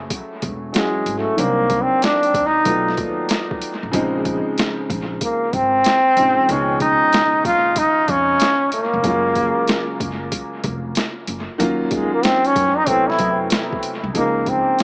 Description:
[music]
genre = hip hop, jazz-hop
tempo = 94 BPM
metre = 4/4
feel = swing 66% on 16ths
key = Db major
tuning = A4 = 440 Hz
[part]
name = warm concert grand piano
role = accompaniment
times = 0.0-14.8 s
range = Cb3 to Ab4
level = -24 LUFS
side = equal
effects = dub echo
[part]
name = upright bass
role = bass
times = 0.0-14.6 s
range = Fb1 to Gb2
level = -28 LUFS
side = equal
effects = none
[part]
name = boom bap sampler-style drum kit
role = drums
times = 0.1-14.8 s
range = hi-hat, kick drum, snare drum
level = -23 LUFS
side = equal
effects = overdrive, dub echo
[part]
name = bright trombone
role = melody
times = 0.8-14.8 s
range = G3 to F4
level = -17 LUFS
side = equal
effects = dub echo
[sound]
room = moderate spring reverb, RT60 1.6 s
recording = echo-heavy mix, small speaker sound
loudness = -16 LUFS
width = side -32 dB against mid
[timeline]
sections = 0.0-14.2 A section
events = trombone solo 0.0-14.2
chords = 0.0 Gbm9; 1.4 Cm7b5; 2.7 Cb7#11; 3.9 Bbm11; 6.5 Db7; 9.0 Gbmaj9; 11.6 Ebm9; 12.9 D13; 14.2 Db69

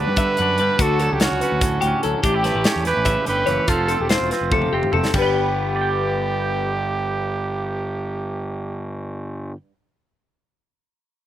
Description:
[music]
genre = math rock and midwest emo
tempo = 289 BPM (eighths)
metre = 7/8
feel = straight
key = G lydian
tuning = A4 = 440 Hz
[part]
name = clear trumpet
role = melody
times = 0.0-8.8 s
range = F4 to B4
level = -24 LUFS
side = right 3 dB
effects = none
[part]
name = twangy electric guitar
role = accompaniment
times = 0.0-9.6 s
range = G2 to G5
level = -26 LUFS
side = right 6 dB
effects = slapback echo
[part]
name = twelve-string electric guitar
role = arpeggios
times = 0.0-9.6 s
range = F4 to G5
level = -24 LUFS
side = left 7 dB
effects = phaser, slapback echo
[part]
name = fuzz fingered electric bass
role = bass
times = 0.0-9.5 s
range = E1 to G2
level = -26 LUFS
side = equal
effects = overdrive
[part]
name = modern studio drum kit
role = drums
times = 0.2-5.2 s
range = crash cymbal, hi-hat, kick drum, snare drum, toms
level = -22 LUFS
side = equal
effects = none
[sound]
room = little or no reverb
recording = recorded outdoors, with no room sound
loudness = -18 LUFS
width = side -12 dB against mid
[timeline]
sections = 0.0-5.1 A section; 5.1-8.1 B section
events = drum fill 4.5-5.1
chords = 0.0 Gmaj7; 0.8 Dmaj7; 2.2 A7; 3.7 Fmaj7; 5.1 G

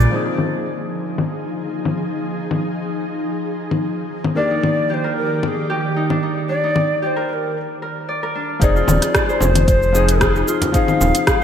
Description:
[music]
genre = organic downtempo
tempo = 113 BPM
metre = 4/4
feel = swing 53% on 16ths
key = F dorian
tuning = A4 = 441 Hz
[part]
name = ethereal airy pad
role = sustained chords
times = 0.0-7.5 s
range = Eb3 to D5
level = -24 LUFS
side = right 1 dB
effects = ensemble chorus, built-in reverb, sidechain pumping
[part]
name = Celtic harp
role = arpeggios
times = 0.0-11.4 s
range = D4 to D5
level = -24 LUFS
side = left 2 dB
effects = ping-pong delay
[part]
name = round analog bass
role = bass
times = 0.0-0.1, 8.6-11.1 s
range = Eb1 to F1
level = -18 LUFS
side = equal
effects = sidechain pumping
[part]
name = afro-pop drum kit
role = drums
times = 0.0-11.4 s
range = congas, hi-hat, rim click, shaker, toms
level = -21 LUFS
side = left 2 dB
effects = low-pass filter on perc, low-pass filter on hats, low-pass filter on snare, low-pass filter on toms, gated reverb
[part]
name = felt-muted upright piano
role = accompaniment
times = 0.1-11.4 s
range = Eb3 to D5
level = -25 LUFS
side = left 3 dB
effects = sidechain pumping, ping-pong delay
[part]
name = mellow hollow Native American-style cedar flute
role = melody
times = 4.4-11.4 s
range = G4 to F5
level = -22 LUFS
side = equal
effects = digital delay
[part]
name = electronic kick drum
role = drums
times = 8.6-11.4 s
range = none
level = -19 LUFS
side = equal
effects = none
[part]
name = frame drum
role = percussion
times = 8.9-11.1 s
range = none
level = -25 LUFS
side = right 1 dB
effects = none
[sound]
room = moderate lush hall reverb, RT60 2.5 s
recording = bright 1980s-style digital production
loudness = -17 LUFS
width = side -8 dB against mid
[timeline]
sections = 0.1-8.6 A section; 8.6-11.4 B section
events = break 7.6-8.6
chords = 0.1 Fm7; 4.4 Ebmaj7; 8.6 Fm7

